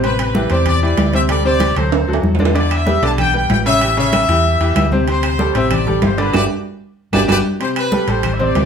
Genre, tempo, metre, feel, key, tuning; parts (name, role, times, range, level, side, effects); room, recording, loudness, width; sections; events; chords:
latin, salsa; 190 BPM; 4/4; straight; A4 = 440 Hz
bright trumpet section; melody; 0.0-8.7 s; G4 to A5; -19 LUFS; left 2 dB
bright grand piano; accompaniment; 0.0-8.7 s; C3 to D5; -18 LUFS; equal
hollow-body short-scale fingered electric bass; bass; 0.0-8.7 s; G1 to E2; -18 LUFS; equal
congas; percussion; 0.0-8.7 s; -21 LUFS; left 1 dB
timbales; percussion; 0.0-8.7 s; -24 LUFS; right 6 dB
claves; percussion; 2.7-8.4 s; -28 LUFS; right 4 dB
wet studio reverb, RT60 0.7 s; heard from further back in the room; -13 LUFS; side -7 dB against mid
0.0-7.6 A section; 7.6-8.7 B section
drum fill 1.9-2.6, 7.0-7.6; band accent 6.3-7.6
0.0 Am9; 1.3 D7sus4; 1.9 D; 2.6 Em7; 3.8 A7; 5.1 D7sus4; 6.3 Gmaj7(no3); 7.6 D7sus4